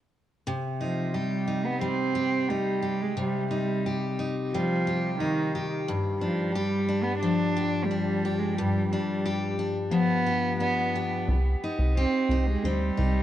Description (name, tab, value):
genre	acoustic pop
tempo	89 BPM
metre	4/4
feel	straight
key	C harmonic minor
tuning	A4 = 439 Hz
part	picked steel-string acoustic guitar	accompaniment	0.5-13.2 s	G2 to G4	-28 LUFS	left 3 dB	none
part	warm cello	melody	0.8-13.2 s	Eb3 to D4	-28 LUFS	right 2 dB	tape echo
part	plucky analog bass	bass	11.3-13.2 s	C2 to D2	-24 LUFS	equal	none
room	light reverb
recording	worn, warbling old tape, cassette tape, warbly pitch drift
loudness	-24 LUFS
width	side -12 dB against mid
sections	0.5-11.3 A section; 11.3-13.2 B section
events	none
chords	0.5 Cm; 5.9 G7; 11.3 Cm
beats	| 0.46 1.14 1.82 2.49 | 3.17 3.85 4.52 5.20 | 5.87 6.55 7.22 7.90 | 8.57 9.25 9.93 10.60 | 11.28 11.95 12.63